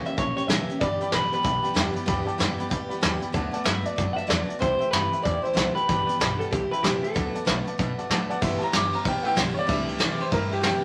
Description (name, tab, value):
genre	rockabilly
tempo	189 BPM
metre	4/4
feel	swing 62% on 8ths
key	G major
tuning	A4 = 440 Hz
part	electric guitar through a small old amp	melody	0.0-7.4 s	G4 to F#5	-29 LUFS	equal	none
part	picked steel-string acoustic guitar	accompaniment	0.0-10.8 s	G2 to G4	-33 LUFS	equal	none
part	upright bass	bass	0.0-10.7 s	G1 to B2	-36 LUFS	equal	none
part	soft brush drum kit	drums	0.1-10.7 s	crash cymbal, hi-hat, kick drum, ride cymbal, snare drum	-29 LUFS	equal	none
part	bright upright piano	accompaniment	0.8-10.8 s	A3 to D6	-33 LUFS	equal	none
room	moderate studio reverb, RT60 0.7 s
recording	none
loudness	-25 LUFS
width	mono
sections	0.0-8.4 A section; 8.4-10.8 B section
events	upright piano solo 8.4-10.8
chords	0.0 C#dim7; 0.8 G6; 3.3 D6; 4.6 C6; 5.9 G6; 6.5 C6; 7.2 D6; 8.4 G6; 9.7 C6